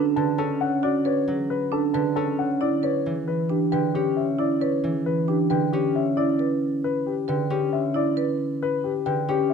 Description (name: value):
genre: classical, minimalist pattern music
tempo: 135 BPM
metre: 4/4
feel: straight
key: unclear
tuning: A4 = 440 Hz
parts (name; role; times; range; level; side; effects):
- warm baby grand piano; melody; 0.0-9.5 s; G4 to A5; -26 LUFS; left 11 dB; none
- concert harp; accompaniment; 0.0-9.5 s; D3 to C#4; -25 LUFS; equal; none
- marimba with medium hard mallets; arpeggios; 0.0-9.3 s; D4 to B4; -27 LUFS; right 13 dB; none
room: light reverb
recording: close, detailed microphones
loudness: -21 LUFS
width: side -6 dB against mid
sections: 0.0-9.5 A section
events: none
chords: 0.0 Bm7; 2.6 G6